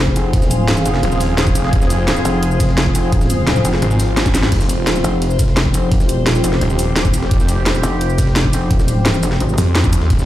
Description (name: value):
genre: dark technical drum and bass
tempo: 172 BPM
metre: 4/4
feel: straight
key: F minor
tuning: A4 = 439 Hz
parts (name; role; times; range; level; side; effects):
- sweeping resonant pad; sustained chords; 0.0-10.3 s; F3 to Ab4; -22 LUFS; left 1 dB; chorus, sidechain pumping
- metallic wobble bass; bass; 0.0-9.6 s; F1 to Ab1; -17 LUFS; equal; chorus
- ethereal airy pad; texture; 0.0-10.3 s; F4 to F5; -24 LUFS; left 1 dB; ensemble chorus, built-in reverb, phaser, sidechain pumping
- electronic kick drum; drums; 0.1-10.2 s; none; -16 LUFS; equal; overdrive
- breakbeat sampler-style drum kit; drums; 0.2-10.3 s; hi-hat, ride cymbal, snare drum; -29 LUFS; equal; none
- drum and bass drum kit; drums; 0.2-10.3 s; crash cymbal, hi-hat, shaker, snare drum; -20 LUFS; equal; overdrive
- snarling distorted saw bass; bass; 1.0-10.3 s; Eb1 to F2; -17 LUFS; equal; distortion, tube saturation
room: little or no reverb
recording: played on a big sound system in a bare room, stone room reverb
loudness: -13 LUFS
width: side -14 dB against mid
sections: 0.0-10.3 A section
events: drum fill 4.3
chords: 0.0 Fmadd9